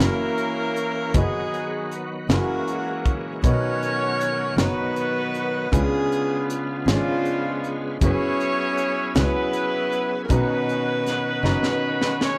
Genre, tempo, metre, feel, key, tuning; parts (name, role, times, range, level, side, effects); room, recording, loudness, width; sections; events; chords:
slow gospel; 52 BPM (dotted quarters); 6/8; straight; B major; A4 = 440 Hz
bright alto saxophone; melody; 0.0-12.2 s; E#4 to C#5; -31 LUFS; equal
clear horn section; melody; 0.0-12.4 s; E#3 to C#5; -30 LUFS; equal
clear concert grand piano; accompaniment; 0.0-12.4 s; B2 to A#5; -29 LUFS; equal
bright tonewheel organ; sustained chords; 0.0-12.4 s; C#3 to B4; -34 LUFS; equal; slow rotary speaker, overdrive, chorus vibrato
rich double bass; bass; 0.0-11.5 s; F#1 to C#2; -26 LUFS; equal
crisp fusion drum kit; drums; 0.0-12.4 s; hi-hat, kick drum, snare drum; -26 LUFS; equal
light reverb; -23 LUFS; mono
0.0-12.4 A section
drum fill 11.4-12.4
0.0 F#7; 1.1 B/F#; 2.3 F#9; 3.4 Bmaj7; 5.7 C#7b9; 8.0 F#9sus4; 10.3 Bmaj9